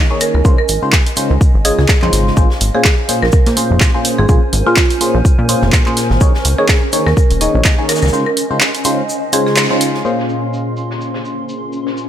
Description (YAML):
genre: piano house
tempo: 125 BPM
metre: 4/4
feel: swing 57% on 16ths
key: Bb minor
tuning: A4 = 440 Hz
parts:
  - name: barking FM electric piano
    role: riff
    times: 0.0-12.1 s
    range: Bb2 to Eb5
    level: -18 LUFS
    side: left 1 dB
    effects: phaser, cassette tape, sidechain pumping
  - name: granular cloud pad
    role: texture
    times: 0.1-12.1 s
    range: Db4 to C6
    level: -23 LUFS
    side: equal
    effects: built-in reverb, sidechain pumping
  - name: marimba with hard mallets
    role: melody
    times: 0.2-9.5 s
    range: F4 to Eb5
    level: -20 LUFS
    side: right 3 dB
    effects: ping-pong delay
  - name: punchy analog drum machine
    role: drums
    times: 0.2-12.1 s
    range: handclaps, hi-hat, shaker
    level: -16 LUFS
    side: right 1 dB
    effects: overdrive, low-pass filter on hats, low-pass filter on snare, low-pass filter on cymbals, low-pass filter on perc
  - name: shaker and snare drum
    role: drums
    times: 0.2-12.1 s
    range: none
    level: -26 LUFS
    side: equal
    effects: high-pass filter on snare, low-pass filter on snare, high-pass filter on perc, low-pass filter on perc, high-pass filter on room, low-pass filter on room
  - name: plucky analog bass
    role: bass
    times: 0.3-8.1 s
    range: Eb1 to Bb2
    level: -14 LUFS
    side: equal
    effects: sidechain pumping
  - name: electronic kick drum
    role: drums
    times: 0.4-7.8 s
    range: none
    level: -12 LUFS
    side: equal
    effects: none
room: light reverb, studio reverb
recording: none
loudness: -11 LUFS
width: side -10 dB against mid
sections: 0.0-10.0 A section; 10.0-12.1 B section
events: band accent 9.6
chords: 0.4 Dbmaj9; 2.4 Bbm9; 6.2 Eb7sus4; 8.1 Dbmaj9; 10.0 Bbm9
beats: | 0.45 0.93 1.41 1.89 | 2.37 2.85 3.33 3.81 | 4.29 4.77 5.25 5.73 | 6.21 6.69 7.17 7.65 | 8.13 8.61 9.09 9.57 | 10.05 10.53 11.01 11.49 | 11.97